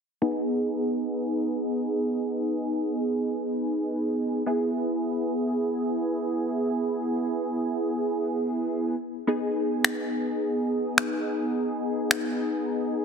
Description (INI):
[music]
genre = dance-pop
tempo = free time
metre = none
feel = none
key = G# minor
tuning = A4 = 441 Hz
[part]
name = funky polysynth comp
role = accompaniment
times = 0.2-13.0 s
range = B3 to G#4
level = -25 LUFS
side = equal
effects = chorus, low-pass filter
[part]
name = electronic finger snaps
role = drums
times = 9.8-12.2 s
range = none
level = -24 LUFS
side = left 1 dB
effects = overdrive
[sound]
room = moderate lush hall reverb, RT60 1.9 s, digital ambience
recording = heavily compressed radio sound, multiband compression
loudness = -25 LUFS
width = side -6 dB against mid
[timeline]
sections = 0.2-13.0 A section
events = none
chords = 0.2 G#m; 4.5 E; 9.3 G#m